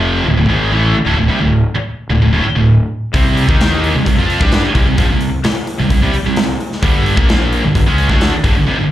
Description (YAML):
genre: hard rock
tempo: 130 BPM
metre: 4/4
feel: straight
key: D phrygian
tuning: A4 = 442 Hz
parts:
  - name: heavy high-gain guitar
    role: riff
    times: 0.0-8.9 s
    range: D2 to G4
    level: -20 LUFS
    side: left 8 dB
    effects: distortion, slapback echo
  - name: scooped high-gain guitar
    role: riff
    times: 0.0-8.9 s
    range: D2 to G4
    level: -15 LUFS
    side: right 4 dB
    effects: distortion
  - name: fuzz fingered electric bass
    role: bass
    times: 0.0-8.7 s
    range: D1 to G2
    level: -16 LUFS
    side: equal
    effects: overdrive
  - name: big rock drum kit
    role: drums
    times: 3.1-8.6 s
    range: hi-hat, kick drum, snare drum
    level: -15 LUFS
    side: equal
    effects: none
room: light reverb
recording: live gig heard through the venue's PA, club reverb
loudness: -11 LUFS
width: side -13 dB against mid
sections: 0.0-8.9 A section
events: none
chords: 0.3 D5; 3.1 C5; 3.5 Eb5; 3.9 C5; 6.8 G5; 7.2 Bb5; 7.6 G5